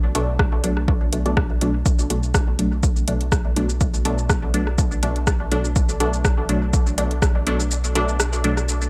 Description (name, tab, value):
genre	dub techno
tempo	123 BPM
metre	4/4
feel	swing 54% on 16ths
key	unclear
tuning	A4 = 438 Hz
part	pure sine sub bass	bass	0.0-8.9 s	B1	-26 LUFS	equal	sidechain pumping
part	filtered dub chord stab	stabs	0.1-8.7 s	B2 to D4	-26 LUFS	equal	chorus, phaser, sidechain pumping, dub echo
part	deep house drum kit	drums	0.1-8.9 s	hi-hat, rim click, shaker	-28 LUFS	equal	overdrive, dub echo
part	electronic kick drum	drums	0.4-7.3 s	none	-23 LUFS	equal	overdrive
room	light reverb, digital ambience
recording	none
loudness	-21 LUFS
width	mono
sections	0.0-8.9 A section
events	filter sweep on synth stab 0.0-8.9; kick drops out 7.7-8.9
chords	0.0 Bm7